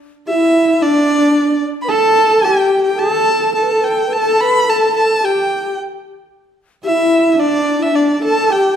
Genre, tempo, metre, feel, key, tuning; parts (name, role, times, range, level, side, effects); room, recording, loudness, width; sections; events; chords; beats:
chinese traditional, Chinese chamber ensemble; 110 BPM; 2/4; rubato; A4 = 440 Hz
clear erhu; melody; 0.3-8.8 s; D5 to B5; -17 LUFS; right 1 dB
dark horsehead fiddle; second line; 0.3-8.8 s; D4 to A4; -16 LUFS; right 3 dB
mellow hollow xiao; second line; 0.3-8.8 s; D4 to B4; -18 LUFS; left 4 dB
wet recital hall reverb, RT60 1.4 s; -12 LUFS; side -9 dB against mid
0.0-8.5 A section
0.28 | 0.82 1.36 | 1.90 2.44 | 3.00 3.56 | 4.12 4.68 | 5.23 5.77 | 6.30 6.83 | 7.38 7.94 | 8.50